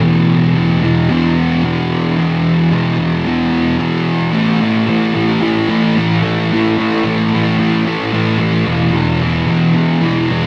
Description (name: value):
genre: rock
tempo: 111 BPM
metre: 4/4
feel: straight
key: unclear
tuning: A4 = 443 Hz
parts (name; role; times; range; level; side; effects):
- thick fuzz guitar; solo; 0.0-10.5 s; E2 to A3; -14 LUFS; equal; distortion, lush chorus, delay
room: wet huge ambient reverb, RT60 4.8 s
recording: dreamy mix soaked in reverb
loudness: -14 LUFS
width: mono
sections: 0.0-4.3 A section; 4.3-10.5 B section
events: none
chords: 0.0 E5; 4.3 A5; 8.7 E5